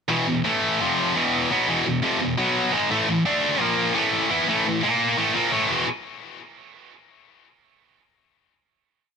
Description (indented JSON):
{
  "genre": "metal",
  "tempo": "171 BPM",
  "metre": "4/4",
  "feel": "straight",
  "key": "E phrygian dominant",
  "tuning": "A4 = 440 Hz",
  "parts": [
    { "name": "heavy high-gain guitar", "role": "solo", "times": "0.1-5.8 s", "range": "E2 to E4", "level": "-20 LUFS", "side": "equal", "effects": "distortion, ping-pong delay" }
  ],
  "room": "light reverb, digital ambience",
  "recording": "none",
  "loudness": "-19 LUFS",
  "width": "side -6 dB against mid",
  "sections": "0.1-5.7 riff; 5.7-7.1 final chord",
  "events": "none",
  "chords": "0.1 E5; 0.4 A5; 0.8 F5; 1.1 E5; 2.4 B5; 2.7 G#5; 2.9 A5; 3.2 D5; 3.6 A#5; 3.9 A5; 4.8 A#5; 5.2 A5; 5.7 E5"
}